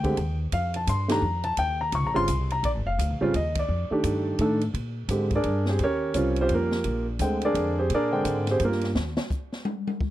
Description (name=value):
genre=jazz piano trio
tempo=171 BPM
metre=3/4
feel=swing 62% on 8ths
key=Bb mixolydian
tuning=A4 = 439 Hz
part: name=warm concert grand piano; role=melody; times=0.0-8.9 s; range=Db3 to Db6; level=-25 LUFS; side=right 1 dB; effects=none
part: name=upright bass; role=bass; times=0.0-9.2 s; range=F1 to Bb2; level=-28 LUFS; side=equal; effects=none
part: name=open jazz drum kit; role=drums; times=0.0-10.1 s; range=hi-hat, kick drum, ride cymbal, snare drum, toms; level=-33 LUFS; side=equal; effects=none
room=little or no reverb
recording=dry, close 1970s-style studio recording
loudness=-23 LUFS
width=side -14 dB against mid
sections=0.0-4.7 A section; 4.7-10.1 B section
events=band accent 1.0, 3.5; grand piano solo 4.7-10.1; drum solo 9.0-10.1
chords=0.0 Bb13 (rootless); 0.5 Fadd9; 1.6 Eb13; 2.6 Bb7; 3.3 N.C.; 3.7 F13; 4.7 Bb13; 5.8 Eb13; 6.8 Bb13; 9.0 N.C.